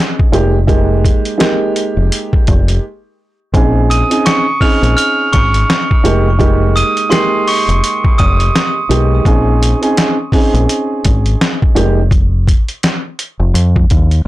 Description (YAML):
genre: hip hop, boom-bap hip-hop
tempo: 84 BPM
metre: 4/4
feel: swing 60% on 16ths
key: unclear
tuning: A4 = 443 Hz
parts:
  - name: dark upright piano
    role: accompaniment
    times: 0.0-12.0 s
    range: Ab3 to Ab4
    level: -16 LUFS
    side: right 2 dB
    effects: cassette tape, high-pass filter, low-pass filter, plate reverb
  - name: boom bap sampler-style drum kit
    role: drums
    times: 0.2-14.2 s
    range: hi-hat, kick drum, snare drum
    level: -13 LUFS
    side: equal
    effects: none
  - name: deep dub fingered electric bass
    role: bass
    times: 0.3-14.2 s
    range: F1 to F2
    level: -12 LUFS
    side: equal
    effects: none
  - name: glockenspiel with hard plastic mallets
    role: melody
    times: 3.9-8.5 s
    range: C6 to F7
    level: -16 LUFS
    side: right 2 dB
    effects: high-pass filter, low-pass filter, ping-pong delay
room: little or no reverb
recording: blown-out, overdriven recording, overdrive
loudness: -10 LUFS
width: side -16 dB against mid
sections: 0.0-14.3 A section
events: break 2.8-3.5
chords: 0.3 Fm11; 3.5 Bbm11; 6.0 Fm11; 9.3 Bbm11; 11.8 F7(no3)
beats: | 0.68 1.40 2.11 2.83 | 3.54 4.25 4.97 5.68 | 6.40 7.11 7.83 8.54 | 9.25 9.97 10.68 11.40 | 12.11 12.82 13.54